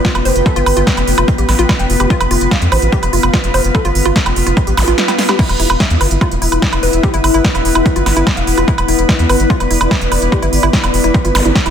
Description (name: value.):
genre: psychedelic trance.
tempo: 146 BPM.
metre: 4/4.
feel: straight.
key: E phrygian.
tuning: A4 = 439 Hz.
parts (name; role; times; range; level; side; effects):
evolving wavetable pad; sustained chords; 0.0-11.7 s; B3 to B4; -19 LUFS; left 1 dB; chorus, built-in reverb, sidechain pumping.
woody wave-folded pluck; riff; 0.0-11.7 s; E4 to G5; -20 LUFS; moving between left 6 dB and right 8 dB; chorus, auto-pan, vintage 12-bit sampler grit, sidechain pumping, tape echo.
big-room dance drum kit; drums; 0.0-11.7 s; crash cymbal, hi-hat, snare drum, woodblock; -17 LUFS; right 2 dB; overdrive.
electronic kick drum; drums; 0.0-11.6 s; none; -16 LUFS; equal; overdrive.
granular cloud pad; texture; 0.0-11.7 s; E4 to G5; -20 LUFS; left 2 dB; built-in reverb, sidechain pumping.
round analog bass; bass; 0.1-11.7 s; E1 to F2; -15 LUFS; equal; none.
zap; sound effects; 4.8-4.9, 11.3-11.5 s; none; -23 LUFS; left 1 dB; none.
room: light reverb.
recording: dense, heavily limited modern master.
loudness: -10 LUFS.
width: side -8 dB against mid.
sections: 0.0-11.7 A section.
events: filter sweep on synth arpeggio sound 0.0-11.7; kick drops out 5.0-5.4; drum fill 5.1-5.4.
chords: 0.0 F5; 5.4 E5.